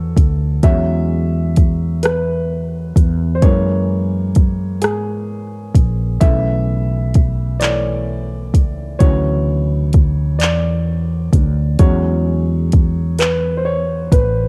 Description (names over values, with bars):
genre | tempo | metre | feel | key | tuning
slow six-eight R&B | 43 BPM (dotted quarters) | 6/8 | straight | E mixolydian | A4 = 442 Hz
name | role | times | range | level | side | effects
warm grand piano | accompaniment | 0.0-14.5 s | C#3 to E5 | -24 LUFS | equal | cassette tape
mellow fretless electric bass | bass | 0.0-14.5 s | A1 to G#2 | -20 LUFS | equal | none
smooth R&B drum kit | drums | 0.2-14.3 s | handclaps, hi-hat, kick drum, rim click | -15 LUFS | equal | cassette tape
room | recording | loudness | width
digital ambience | home recording on cassette | -16 LUFS | mono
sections
0.0-14.5 A section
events
grand piano solo 0.0-14.5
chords
0.0 Dmaj9; 0.6 E69; 3.4 F#9; 6.2 B7sus4; 9.0 Dmaj9; 11.8 E69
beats
| 0.63 2.03 | 3.42 4.82 | 6.21 7.61 | 9.01 10.40 | 11.80 13.19